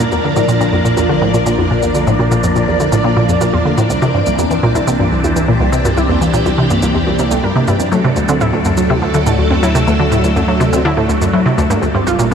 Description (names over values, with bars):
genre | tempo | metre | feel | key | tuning
ambient, sequencer-driven space music | 123 BPM | 4/4 | straight | Bb lydian | A4 = 440 Hz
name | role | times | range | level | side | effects
phased string machine | sustained chords | 0.0-12.3 s | E3 to D5 | -16 LUFS | equal | ensemble chorus, phaser
wide unison pluck | arpeggios | 0.0-12.3 s | Bb2 to Bb4 | -21 LUFS | right 2 dB | auto-pan, tape echo
resonant blip pluck | riff | 0.0-12.3 s | C2 to F#3 | -14 LUFS | equal | chorus, tape echo
round analog bass | bass | 0.0-12.3 s | G1 to D2 | -23 LUFS | equal | none
shaker and bongos | percussion | 0.0-12.3 s | none | -27 LUFS | right 1 dB | tape echo
room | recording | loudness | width
wet huge ambient reverb, RT60 7.8 s | none | -11 LUFS | side -7 dB against mid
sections
0.0-12.3 A section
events
none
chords
0.0 Bb; 3.9 Cadd9; 7.8 D; 11.7 Gm